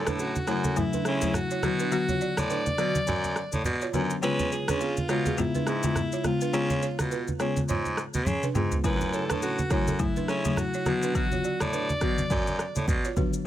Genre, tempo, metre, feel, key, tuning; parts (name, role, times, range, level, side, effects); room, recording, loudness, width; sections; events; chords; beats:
afrobeats; 104 BPM; 4/4; swing 58% on 16ths; A4 = 440 Hz
breathy alto saxophone; melody; 0.0-13.2 s; E4 to D5; -32 LUFS; equal; digital delay
folk marimba with medium mallets; accompaniment; 0.0-13.3 s; C#3 to F#4; -30 LUFS; left 4 dB
balafon; riff; 0.0-13.3 s; B3 to D5; -35 LUFS; right 7 dB
raspy baritone saxophone; bass; 0.0-13.1 s; F#2 to C#3; -30 LUFS; right 1 dB
afro-pop drum kit; drums; 0.1-13.4 s; kick drum, rim click, shaker, toms; -31 LUFS; equal
congas; percussion; 0.1-13.3 s; -32 LUFS; right 2 dB
studio reverb; -24 LUFS; side -12 dB against mid
0.0-13.5 A section
break 0.0-8.8; drum fill 8.3-8.8
0.0 F#m7; 1.6 Bm; 4.2 C#7; 8.8 F#m7; 10.9 Bm
0.19 0.76 1.34 | 1.92 2.50 3.07 3.65 | 4.23 4.80 5.38 5.96 | 6.53 7.11 7.69 8.26 | 8.84 9.42 9.99 10.57 | 11.15 11.73 12.30 12.88